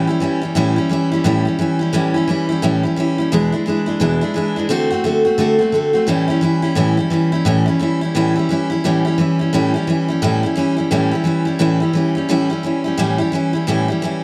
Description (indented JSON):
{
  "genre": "rock",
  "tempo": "174 BPM",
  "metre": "4/4",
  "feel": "swing 62% on 8ths",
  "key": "A mixolydian",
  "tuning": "A4 = 440 Hz",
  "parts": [
    { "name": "picked steel-string acoustic guitar", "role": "solo", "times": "0.0-14.2 s", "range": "E2 to F#4", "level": "-17 LUFS", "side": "equal", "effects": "none" }
  ],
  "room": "light reverb",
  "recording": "none",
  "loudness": "-17 LUFS",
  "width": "mono",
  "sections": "0.0-8.8 A section; 8.8-14.2 A section",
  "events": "none",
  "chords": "0.0 A7; 3.3 E7; 4.7 D7; 6.1 A7"
}